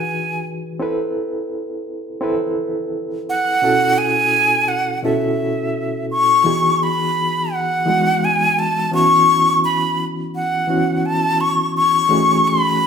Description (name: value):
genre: soul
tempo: 85 BPM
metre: 4/4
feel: straight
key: E major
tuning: A4 = 439 Hz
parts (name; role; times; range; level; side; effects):
- breathy bright jazz flute; melody; 0.0-12.9 s; E5 to C#6; -16 LUFS; left 1 dB; none
- barky reed electric piano; accompaniment; 0.0-12.9 s; B2 to B4; -20 LUFS; equal; fast tremolo
room: wet large studio reverb, RT60 1.2 s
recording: band playing live in one room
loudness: -15 LUFS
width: side -6 dB against mid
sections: 0.0-6.5 A section; 6.5-12.9 B section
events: none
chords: 0.0 Emaj9; 0.8 Amadd9; 3.6 B7sus4; 6.5 Emaj9; 8.9 A69/E (rootless); 12.1 B13/E